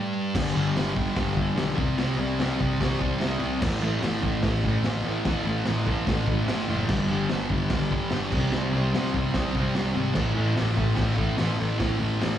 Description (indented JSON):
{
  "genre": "garage rock duo or trio",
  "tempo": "146 BPM",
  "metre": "4/4",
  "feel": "straight",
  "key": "unclear",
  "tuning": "A4 = 440 Hz",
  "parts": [
    { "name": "thick fuzz guitar", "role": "riff", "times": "0.0-12.4 s", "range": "G2 to C4", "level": "-25 LUFS", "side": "equal", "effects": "distortion, slapback echo" },
    { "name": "fuzz picked electric bass", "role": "bass", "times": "0.3-12.4 s", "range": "F#1 to C2", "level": "-30 LUFS", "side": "equal", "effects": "overdrive" },
    { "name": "crunchy breakbeat drum kit", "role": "drums", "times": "0.3-12.3 s", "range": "crash cymbal, hi-hat, kick drum, snare drum", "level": "-29 LUFS", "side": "equal", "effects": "none" }
  ],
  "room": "little or no reverb",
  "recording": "live gig heard through the venue's PA, club reverb",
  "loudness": "-23 LUFS",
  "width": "side -10 dB against mid",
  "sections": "0.3-12.4 A section",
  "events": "break 0.0-0.3",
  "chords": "0.3 G5; 1.8 C5; 3.6 A5; 6.9 G5; 8.3 C5; 10.2 A5",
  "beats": "| 0.35 0.76 1.16 1.57 | 1.98 2.39 2.79 3.20 | 3.61 4.02 4.43 4.84 | 5.25 5.66 6.07 6.48 | 6.89 7.30 7.71 8.12 | 8.53 8.94 9.35 9.76 | 10.17 10.58 10.99 11.39 | 11.80 12.21"
}